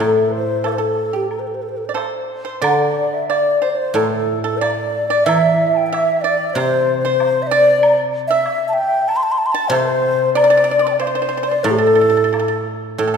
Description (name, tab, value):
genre	chinese traditional, Chinese chamber ensemble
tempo	93 BPM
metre	4/4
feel	rubato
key	A yu mode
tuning	A4 = 440 Hz
part	mellow hollow xiao	melody	0.0-13.2 s	G4 to D6	-18 LUFS	equal	none
part	pipa	second line	0.0-13.2 s	G4 to A5	-23 LUFS	right 7 dB	none
part	xiao	second line	0.0-12.6 s	G4 to A5	-21 LUFS	left 4 dB	none
part	guzheng	accompaniment	0.0-13.2 s	A2 to E3	-21 LUFS	equal	none
part	woodblock	percussion	0.0-12.5 s	none	-30 LUFS	left 1 dB	none
room	wet concert hall reverb, RT60 2.4 s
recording	recorded in a church or concert hall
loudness	-14 LUFS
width	side -6 dB against mid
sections	0.0-2.6 A section; 2.6-13.0 B section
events	none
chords	none